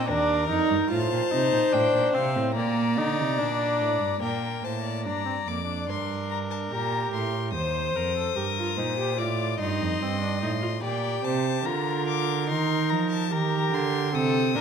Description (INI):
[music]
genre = classical, baroque-style fugue for string quartet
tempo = 73 BPM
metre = 4/4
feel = straight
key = Eb major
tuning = A4 = 440 Hz
[part]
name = rich violin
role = melody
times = 0.0-14.6 s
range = F5 to Eb6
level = -31 LUFS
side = left 11 dB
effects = none
[part]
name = rich violin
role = second line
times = 0.0-14.6 s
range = A4 to Eb5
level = -30 LUFS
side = left 4 dB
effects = none
[part]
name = warm viola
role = accompaniment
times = 0.0-14.6 s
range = Bb3 to C5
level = -28 LUFS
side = right 3 dB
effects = none
[part]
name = rich cello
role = bass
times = 0.0-14.6 s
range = Eb2 to F3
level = -29 LUFS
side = right 4 dB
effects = none
[sound]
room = wet recital hall reverb, RT60 1.5 s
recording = none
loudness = -23 LUFS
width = side -7 dB against mid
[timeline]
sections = 0.0-4.2 A section; 4.2-14.6 B section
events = none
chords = 0.0 Eb5; 0.9 F/A; 2.6 Bb; 5.9 Gm; 7.5 Cm/Eb; 9.2 Adim; 10.8 Bb; 12.5 Eb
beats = 0.08 | 0.90 1.73 2.56 3.39 | 4.22 5.06 5.89 6.71 | 7.54 8.36 9.19 10.01 | 10.83 11.66 12.49 13.32 | 14.14